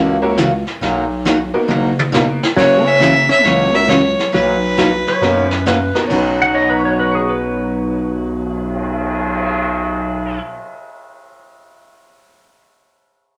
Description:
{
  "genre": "country, western swing",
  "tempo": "136 BPM",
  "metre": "4/4",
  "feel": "swing 65% on 8ths",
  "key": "B major",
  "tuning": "A4 = 439 Hz",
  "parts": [
    { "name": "picked steel-string acoustic guitar", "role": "accompaniment", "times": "0.0-10.6 s", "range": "B2 to F#4", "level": "-21 LUFS", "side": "equal", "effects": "none" },
    { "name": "growling FM bass", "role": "bass", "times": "0.0-10.4 s", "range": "F#1 to F#2", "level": "-24 LUFS", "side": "equal", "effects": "none" },
    { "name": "tack piano", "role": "accompaniment", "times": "0.2-11.4 s", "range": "B2 to C#7", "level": "-23 LUFS", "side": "equal", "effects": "none" },
    { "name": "vintage brush drum kit", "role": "drums", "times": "0.4-9.5 s", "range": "brushed snare drum, crash cymbal, cymbal swell, hi-hat, kick drum, snare drum, toms", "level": "-24 LUFS", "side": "equal", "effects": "none" },
    { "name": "clear fiddle", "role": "melody", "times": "2.6-5.6 s", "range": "B4 to E5", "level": "-17 LUFS", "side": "equal", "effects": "none" },
    { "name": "hollow-body jazz guitar", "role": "second line", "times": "2.6-5.6 s", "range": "F#3 to C#4", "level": "-20 LUFS", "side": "equal", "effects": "none" },
    { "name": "pedal steel guitar", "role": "second line", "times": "5.1-10.4 s", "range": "G#4 to F#5", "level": "-21 LUFS", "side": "equal", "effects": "none" }
  ],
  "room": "wet studio reverb, RT60 0.5 s",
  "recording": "none",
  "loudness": "-16 LUFS",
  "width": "mono",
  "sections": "0.0-2.6 A section; 2.6-6.1 B section; 6.1-9.6 C section",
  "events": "drum fill 1.7-2.6",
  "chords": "0.0 F#7; 0.8 Bmaj7; 2.6 F#7; 4.3 Bmaj7"
}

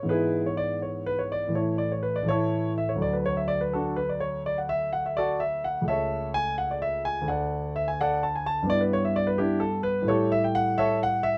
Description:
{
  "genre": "classical, baroque-style suite movement for grand piano",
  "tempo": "84 BPM (dotted quarters)",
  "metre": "12/8",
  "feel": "rubato",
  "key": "unclear",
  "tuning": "A4 = 440 Hz",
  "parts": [
    { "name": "warm concert grand piano", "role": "solo", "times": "0.0-11.4 s", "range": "C#2 to A5", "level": "-27 LUFS", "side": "equal", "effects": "none" }
  ],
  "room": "light reverb",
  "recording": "dark, warm production",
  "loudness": "-27 LUFS",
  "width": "mono",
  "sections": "0.0-11.4 A section",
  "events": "none",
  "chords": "0.1 E/G#; 1.6 A; 3.0 D; 5.9 A/C#; 7.3 D; 8.7 Em7/G; 10.1 A7"
}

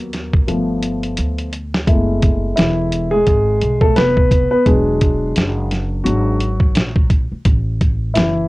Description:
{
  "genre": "hip hop, jazz-hop",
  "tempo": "86 BPM",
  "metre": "4/4",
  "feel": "swing 58% on 16ths",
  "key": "F# minor",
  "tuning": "A4 = 441 Hz",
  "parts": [
    { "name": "dark grand piano", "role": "accompaniment", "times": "0.0-8.5 s", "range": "E3 to B4", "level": "-17 LUFS", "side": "left 1 dB", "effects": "none" },
    { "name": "upright bass", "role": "bass", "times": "0.0-8.5 s", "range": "E1 to D#2", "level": "-21 LUFS", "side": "equal", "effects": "transformer saturation" },
    { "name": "dusty soul sampler-style drum kit", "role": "drums", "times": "0.1-8.4 s", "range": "hi-hat, kick drum, snare drum", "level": "-15 LUFS", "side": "equal", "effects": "none" }
  ],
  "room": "little or no reverb",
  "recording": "worn, warbling old tape, cassette tape, warbly pitch drift",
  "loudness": "-14 LUFS",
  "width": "side -20 dB against mid",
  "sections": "0.0-1.9 A section; 1.9-8.5 B section",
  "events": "grand piano solo 0.0-1.9, 1.9-8.5; drum fill 1.2-1.9",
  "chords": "0.5 G9; 1.9 F#m11; 4.7 E9; 7.5 A5"
}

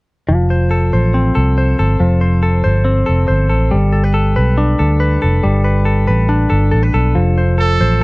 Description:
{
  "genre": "indie pop",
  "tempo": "140 BPM",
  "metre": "4/4",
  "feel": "straight",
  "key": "unclear",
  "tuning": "A4 = 443 Hz",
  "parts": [
    { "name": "direct-recorded clean electric guitar", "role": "arpeggios", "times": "0.3-8.0 s", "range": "F3 to C5", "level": "-16 LUFS", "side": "left 1 dB", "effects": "none" },
    { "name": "vintage muted fingered electric bass", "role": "bass", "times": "0.3-8.0 s", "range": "F1 to D2", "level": "-13 LUFS", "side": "equal", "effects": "none" },
    { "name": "clear trumpet", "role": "melody", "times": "7.6-8.0 s", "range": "A4", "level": "-16 LUFS", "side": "right 4 dB", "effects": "none" }
  ],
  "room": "little or no reverb",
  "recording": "dry, close 1970s-style studio recording",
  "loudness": "-11 LUFS",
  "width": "side -24 dB against mid",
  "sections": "0.3-7.2 A section",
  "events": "none",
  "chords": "0.3 F; 3.7 Gadd9; 7.2 F"
}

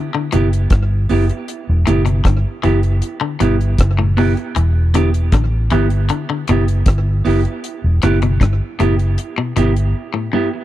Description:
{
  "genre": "roots reggae",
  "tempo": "78 BPM",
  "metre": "4/4",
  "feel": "straight",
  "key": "E minor",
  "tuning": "A4 = 441 Hz",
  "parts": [
    { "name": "twangy electric guitar", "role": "arpeggios", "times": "0.0-10.5 s", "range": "G2 to E3", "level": "-20 LUFS", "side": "left 6 dB", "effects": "none" },
    { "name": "semi-hollow electric guitar", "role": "accompaniment", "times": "0.3-10.6 s", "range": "B3 to G4", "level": "-20 LUFS", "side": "right 3 dB", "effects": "spring reverb, dub echo" },
    { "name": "vintage muted fingered electric bass", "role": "bass", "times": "0.3-9.9 s", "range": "E1 to A1", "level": "-15 LUFS", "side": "equal", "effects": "none" },
    { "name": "deep reggae drum kit", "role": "drums", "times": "0.3-9.9 s", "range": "hi-hat, kick drum, rim click", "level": "-17 LUFS", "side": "equal", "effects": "none" }
  ],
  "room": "little or no reverb",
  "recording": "dry, close 1970s-style studio recording",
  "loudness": "-14 LUFS",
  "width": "side -14 dB against mid",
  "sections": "0.0-10.6 A section",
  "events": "break 9.9-10.6",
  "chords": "0.0 Em"
}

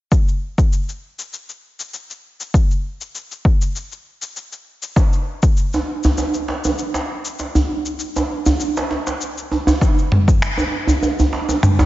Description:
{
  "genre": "downtempo",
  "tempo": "99 BPM",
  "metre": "4/4",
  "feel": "swing 53% on 16ths",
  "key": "none",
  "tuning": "none",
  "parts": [
    { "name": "dusty soul sampler-style drum kit", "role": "drums", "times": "0.1-11.9 s", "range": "finger snaps, shaker, toms", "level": "-22 LUFS", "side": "equal", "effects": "overdrive, studio reverb" },
    { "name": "electronic kick drum", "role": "drums", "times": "0.1-5.5, 9.8-10.4 s", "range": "none", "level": "-15 LUFS", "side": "equal", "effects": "overdrive, studio reverb" },
    { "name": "djembe", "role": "percussion", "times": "5.0-11.9 s", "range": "none", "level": "-18 LUFS", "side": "right 1 dB", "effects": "none" }
  ],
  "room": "light reverb, digital ambience",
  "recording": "nothing above 7.6 kHz",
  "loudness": "-16 LUFS",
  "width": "side -15 dB against mid",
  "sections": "0.1-9.8 A section; 9.8-11.9 B section",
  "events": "kick drops out 7.4-9.8",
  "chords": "none"
}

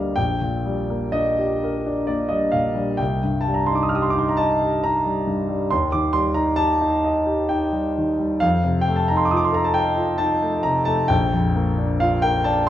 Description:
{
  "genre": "classical, romantic nocturne for solo piano",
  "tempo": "66 BPM",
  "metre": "3/4",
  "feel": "rubato",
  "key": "G minor",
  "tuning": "A4 = 440 Hz",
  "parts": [
    { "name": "warm concert grand piano", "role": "solo", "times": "0.0-12.7 s", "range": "G1 to F6", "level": "-18 LUFS", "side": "equal", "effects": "none" }
  ],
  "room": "wet recital hall reverb, RT60 1.5 s",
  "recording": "dark, warm production",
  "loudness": "-18 LUFS",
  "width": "side -12 dB against mid",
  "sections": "0.0-12.7 A section",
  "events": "none",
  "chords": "0.2 Gm/Bb; 3.0 Cm; 5.7 Ebmaj7#11; 8.4 F7; 11.1 Bb"
}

